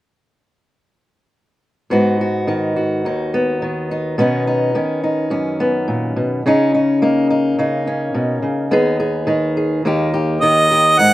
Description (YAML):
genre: folk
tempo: 106 BPM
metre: 4/4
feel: straight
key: G# minor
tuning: A4 = 441 Hz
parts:
  - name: fingerpicked steel-string acoustic guitar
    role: accompaniment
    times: 1.9-11.1 s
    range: D#2 to G#4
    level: -15 LUFS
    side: equal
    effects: slapback echo
  - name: warm harmonica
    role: melody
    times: 10.4-11.1 s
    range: D#5 to F#5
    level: -11 LUFS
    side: right 2 dB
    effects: none
room: light reverb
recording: recorded outdoors, with no room sound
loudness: -15 LUFS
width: side -16 dB against mid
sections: 1.9-11.0 A section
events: none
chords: 1.9 G#m7; 4.2 Badd9; 6.5 Bmaj9; 8.7 G#m/D#; 9.9 D#